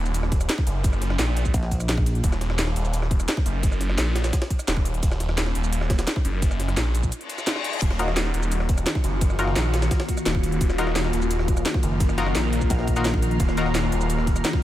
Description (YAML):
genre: dark technical drum and bass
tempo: 172 BPM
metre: 4/4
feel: straight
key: Eb minor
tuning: A4 = 440 Hz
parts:
  - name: phased detuned saw bass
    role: bass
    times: 0.0-14.4 s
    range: Eb1 to Bb1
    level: -24 LUFS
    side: equal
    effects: phaser, overdrive, sidechain pumping
  - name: drum and bass drum kit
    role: drums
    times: 0.1-14.5 s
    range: crash cymbal, hi-hat, rim click, shaker, snare drum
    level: -29 LUFS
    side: equal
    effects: none
  - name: jungle sampler-style drum kit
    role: drums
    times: 0.1-14.6 s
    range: ride cymbal, snare drum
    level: -35 LUFS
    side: equal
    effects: high-pass filter on cymbals, high-pass filter on snare
  - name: electronic kick drum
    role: drums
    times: 0.3-14.6 s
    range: none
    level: -23 LUFS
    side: equal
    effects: none
  - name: pulsing pluck wobble bass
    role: bass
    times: 1.5-2.2, 12.7-13.4 s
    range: Bb1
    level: -23 LUFS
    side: equal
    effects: chorus
  - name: reverse cymbal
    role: sound effects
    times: 7.2-7.8 s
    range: none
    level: -32 LUFS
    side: left 4 dB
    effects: none
  - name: swarming drone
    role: sustained chords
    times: 8.5-14.6 s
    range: Eb3 to Bb4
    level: -27 LUFS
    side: left 2 dB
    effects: built-in reverb, sidechain pumping
  - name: band-passed chord stab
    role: stabs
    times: 8.0-13.7 s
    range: Eb4 to Bb4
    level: -30 LUFS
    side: left 2 dB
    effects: chorus, cassette tape, tape echo
room: light reverb, digital ambience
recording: none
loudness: -21 LUFS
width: side -14 dB against mid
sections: 0.0-14.6 A section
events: break 7.1-7.8; reverse cymbal 7.2-7.8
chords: 0.0 Ebmadd9